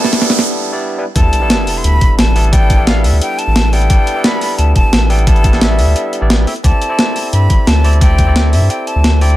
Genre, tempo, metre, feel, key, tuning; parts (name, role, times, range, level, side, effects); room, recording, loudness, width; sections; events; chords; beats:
liquid drum and bass; 175 BPM; 4/4; straight; A minor; A4 = 436 Hz
breathy bright jazz flute; melody; 0.0-9.4 s; E5 to C6; -20 LUFS; left 1 dB; tape echo
barky tine electric piano; accompaniment; 0.0-9.4 s; G3 to E5; -19 LUFS; equal; overdrive, vintage 12-bit sampler grit, dub echo
saturated sub bass; bass; 0.0-9.4 s; E1 to G2; -12 LUFS; equal; tube saturation, high-pass filter
breakbeat sampler-style drum kit; drums; 0.0-9.4 s; hi-hat, snare drum; -16 LUFS; equal; overdrive
riser and sub drop; sound effects; 0.0-2.5 s; -19 LUFS; right 1 dB
electronic kick drum; drums; 0.1-8.3 s; -11 LUFS; equal; overdrive, high-pass filter on kick, high-pass filter on room
digital ambience; -10 LUFS; side -15 dB against mid
0.0-1.2 A section; 1.2-9.4 B section
build-up 0.0-1.2; drum fill 0.0-0.5; riser 0.0-0.5; break 0.5-1.2; drop 1.2-9.4; impact 1.2-2.5
0.0 A9sus4; 1.0 N.C.; 1.2 A9sus4; 6.5 D9sus4
0.13 0.47 0.81 | 1.16 1.50 1.84 2.19 | 2.53 2.87 3.21 3.56 | 3.90 4.24 4.59 4.93 | 5.27 5.61 5.96 6.30 | 6.64 6.99 7.33 7.67 | 8.01 8.36 8.70 9.04